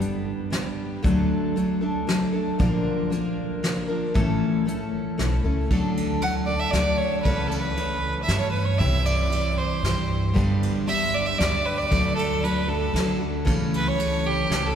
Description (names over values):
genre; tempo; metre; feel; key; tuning
acoustic folk duo or small band; 116 BPM; 3/4; straight; D major; A4 = 440 Hz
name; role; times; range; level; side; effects
picked steel-string acoustic guitar; accompaniment; 0.0-14.8 s; G2 to Bb4; -25 LUFS; left 1 dB; none
soft brush drum kit; drums; 0.0-14.6 s; hi-hat, kick drum, ride cymbal, snare drum; -29 LUFS; equal; none
upright bass; bass; 1.0-14.8 s; G1 to G2; -28 LUFS; equal; none
clear fiddle; second line; 6.2-14.8 s; G4 to F#5; -25 LUFS; right 2 dB; none
room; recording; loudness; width
wet cathedral reverb, RT60 4.8 s; recorded in a church or concert hall; -21 LUFS; side -8 dB against mid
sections
0.0-5.7 A section; 5.7-14.8 B section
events
fiddle solo 5.7-14.8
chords
0.0 G; 1.0 D; 2.6 Bb; 4.1 A; 5.7 D; 7.3 A/C#; 8.8 C; 10.4 G; 11.9 D; 13.5 A/C#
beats
0.00 0.52 | 1.04 1.56 2.08 | 2.59 3.11 3.63 | 4.15 4.67 5.18 | 5.70 6.22 6.74 | 7.26 7.78 8.29 | 8.81 9.33 9.85 | 10.37 10.88 11.40 | 11.92 12.44 12.96 | 13.47 13.99 14.51